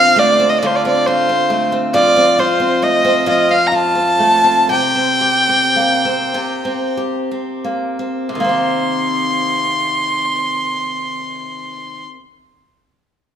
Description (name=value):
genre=celtic folk, Celtic slow air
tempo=42-70 BPM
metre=3/4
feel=rubato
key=C dorian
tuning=A4 = 439 Hz
part: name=warm fiddle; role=melody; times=0.0-12.0 s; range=C5 to C6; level=-14 LUFS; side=equal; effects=none
part: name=picked steel-string acoustic guitar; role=accompaniment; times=0.0-12.2 s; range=F2 to G4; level=-18 LUFS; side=equal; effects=none
room=moderate recital hall reverb, RT60 1.3 s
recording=minimal, uncompressed stereo recording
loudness=-13 LUFS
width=side -9 dB against mid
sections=0.0-8.4 A section; 8.4-12.5 B section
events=slowing down 1.9-8.4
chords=0.0 Dm7; 1.9 F; 4.7 C5; 8.4 Cm7